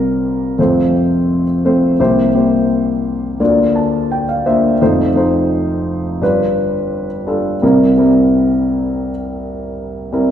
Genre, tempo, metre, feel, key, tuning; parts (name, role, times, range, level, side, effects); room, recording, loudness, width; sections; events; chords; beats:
folk; 85 BPM; 4/4; straight; F major; A4 = 439 Hz
dark baby grand piano; solo; 0.0-10.3 s; F1 to A5; -12 LUFS; equal
wet recital hall reverb, RT60 1.4 s; recorded in a church or concert hall; -12 LUFS; side -10 dB against mid
0.0-10.3 A section
0.0 C7sus4; 0.6 F; 2.0 C7; 3.4 Bb/D; 4.8 F7; 6.2 G7; 7.6 C7
0.58 1.29 | 2.00 2.70 3.40 4.11 | 4.81 5.51 6.22 6.92 | 7.63 8.34 9.05 9.77